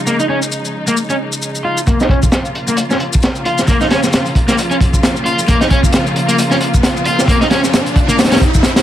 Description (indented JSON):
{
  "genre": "breakbeat, breaks",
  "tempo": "133 BPM",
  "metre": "4/4",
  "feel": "swing 57% on 16ths",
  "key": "Bb minor",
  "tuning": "A4 = 438 Hz",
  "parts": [
    { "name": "warm symphonic string section", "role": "sustained chords", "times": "0.0-8.8 s", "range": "Db3 to F4", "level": "-20 LUFS", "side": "equal", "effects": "sidechain pumping" },
    { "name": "overdriven semi-hollow guitar", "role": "riff", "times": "0.1-8.4 s", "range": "Bb3 to F4", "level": "-17 LUFS", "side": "equal", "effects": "vintage 12-bit sampler grit, low-pass filter, ping-pong delay" },
    { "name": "shaker", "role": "drums", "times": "0.1-8.8 s", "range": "none", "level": "-24 LUFS", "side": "left 3 dB", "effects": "overdrive" },
    { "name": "crunchy breakbeat drum kit", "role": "drums", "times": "1.9-8.8 s", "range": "hi-hat, kick drum, snare drum", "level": "-13 LUFS", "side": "equal", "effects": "low-pass filter on kick, low-pass filter on hats, low-pass filter on snare, low-pass filter on room" },
    { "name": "riser", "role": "sound effects", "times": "4.4-8.8 s", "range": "none", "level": "-23 LUFS", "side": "right 1 dB", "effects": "none" }
  ],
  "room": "light reverb",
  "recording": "vinyl crackle",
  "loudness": "-11 LUFS",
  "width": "side -12 dB against mid",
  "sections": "0.0-1.9 A section; 1.9-8.8 B section",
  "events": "build-up 1.9-8.8; filter sweep on overdriven electric guitar 1.9-8.8; riser 4.4-8.8",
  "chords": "0.0 Bbm (rootless); 1.9 Bbm"
}